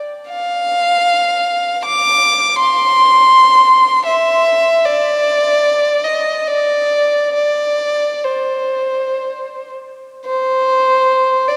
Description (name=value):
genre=classical, free, expressive piece for unaccompanied violin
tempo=46-84 BPM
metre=3/4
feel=rubato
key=C major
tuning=A4 = 440 Hz
part: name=warm violin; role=solo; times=0.3-11.6 s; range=C5 to D6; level=-14 LUFS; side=equal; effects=none
room=wet church reverb, RT60 4.0 s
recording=none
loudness=-14 LUFS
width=mono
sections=0.0-10.3 A section; 10.3-11.6 A section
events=none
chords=none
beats=| 0.29 1.01 1.84 | 2.59 3.32 4.06 | 4.85 5.63 6.45 | 7.33 8.24 9.17 | 10.26 11.09